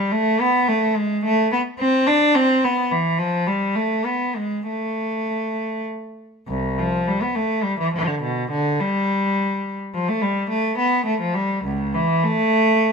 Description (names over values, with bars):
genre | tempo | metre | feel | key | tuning
classical, baroque-style suite movement for unaccompanied cello | 96-108 BPM | 3/4 | rubato | A minor | A4 = 441 Hz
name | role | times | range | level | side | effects
rich cello | solo | 0.0-12.9 s | C2 to D4 | -18 LUFS | equal | none
room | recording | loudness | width
moderate stone room reverb, RT60 1.1 s | none | -18 LUFS | side -5 dB against mid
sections
0.0-6.5 A section; 6.5-12.9 A section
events
none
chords
none